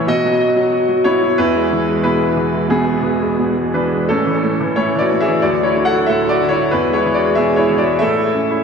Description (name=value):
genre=classical, lyrical solo piano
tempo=92 BPM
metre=4/4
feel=rubato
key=unclear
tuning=A4 = 441 Hz
part: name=bright concert grand piano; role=solo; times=0.0-8.6 s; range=D2 to F#5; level=-13 LUFS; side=equal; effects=diffuse ambient delay
room=wet lush hall reverb, RT60 3.0 s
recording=dreamy mix soaked in reverb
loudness=-13 LUFS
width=side -6 dB against mid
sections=0.0-8.6 A section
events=none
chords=0.1 B; 1.4 E; 4.1 A; 5.4 D; 6.7 E; 8.0 A